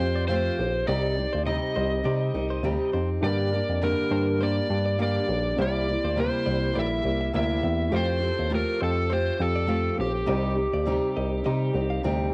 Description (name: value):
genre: acoustic pop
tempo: 102 BPM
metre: 4/4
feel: swing 55% on 16ths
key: unclear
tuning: A4 = 442 Hz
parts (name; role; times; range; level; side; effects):
- overdriven slide guitar; melody; 0.0-12.0 s; G4 to E5; -31 LUFS; equal; cassette tape
- fingerpicked steel-string acoustic guitar; accompaniment; 0.0-12.3 s; G2 to G4; -31 LUFS; equal; none
- bell-like tine electric piano; bass; 0.0-12.3 s; Bb1 to C3; -30 LUFS; equal; none
- direct-recorded clean electric guitar; arpeggios; 0.2-12.0 s; G4 to F5; -40 LUFS; equal; none
- dark upright piano; accompaniment; 3.2-12.3 s; A3 to C5; -41 LUFS; equal; none
room: little or no reverb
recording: home recording on cassette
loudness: -26 LUFS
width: mono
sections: 0.0-12.3 A section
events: none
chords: 0.0 Fadd9; 0.9 Cm; 3.2 Gm; 5.6 C7; 7.9 Fadd9; 10.3 Cm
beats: 0.29 | 0.88 1.47 2.05 2.64 | 3.23 3.82 4.40 4.99 | 5.58 6.17 6.75 7.34 | 7.93 8.51 9.10 9.69 | 10.28 10.86 11.45 12.04